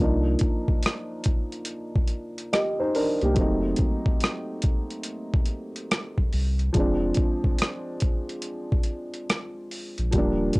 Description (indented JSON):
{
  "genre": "lo-fi hip hop",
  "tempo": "71 BPM",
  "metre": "4/4",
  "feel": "swing 64% on 16ths",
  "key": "unclear",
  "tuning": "A4 = 440 Hz",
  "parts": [
    { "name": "dark upright piano", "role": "accompaniment", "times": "0.0-10.6 s", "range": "F3 to Eb5", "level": "-27 LUFS", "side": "equal", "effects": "none" },
    { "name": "warm sub bass", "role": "bass", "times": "0.0-10.5 s", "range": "Eb1 to C2", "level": "-26 LUFS", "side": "equal", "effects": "tube saturation" },
    { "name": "boom bap sampler-style drum kit", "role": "drums", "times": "0.4-10.6 s", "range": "hi-hat, kick drum, rim click", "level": "-24 LUFS", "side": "equal", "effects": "overdrive, vintage 12-bit sampler grit" }
  ],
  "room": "light reverb",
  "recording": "dry, gritty hardware recording, cassette tape",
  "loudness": "-23 LUFS",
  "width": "side -24 dB against mid",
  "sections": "0.0-10.6 A section",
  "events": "none",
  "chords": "0.0 Cm11; 3.4 F7b9 (rootless); 6.8 Bb9/F (rootless)"
}